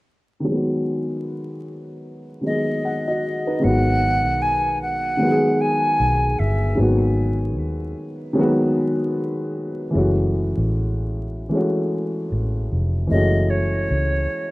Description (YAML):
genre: hip hop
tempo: 76 BPM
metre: 4/4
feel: swing 57% on 16ths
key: G# phrygian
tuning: A4 = 440 Hz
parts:
  - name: dark upright piano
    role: accompaniment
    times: 0.4-14.5 s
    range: D#3 to F#5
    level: -22 LUFS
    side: equal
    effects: cassette tape, low-pass filter
  - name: silver concert flute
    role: melody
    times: 2.5-6.8, 13.1-14.5 s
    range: C#5 to G#5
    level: -22 LUFS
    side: equal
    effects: analog delay
  - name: vintage muted fingered electric bass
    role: bass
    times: 3.6-14.3 s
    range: E#1 to D#2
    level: -22 LUFS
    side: equal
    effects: none
room: moderate studio reverb, RT60 0.6 s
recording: rough home demo mix, vinyl crackle, lossy compression artefacts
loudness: -18 LUFS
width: side -20 dB against mid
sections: 0.5-3.6 A section; 3.6-14.5 B section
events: filter sweep on upright piano 0.5-3.6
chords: 0.5 G#m7; 9.9 F#m7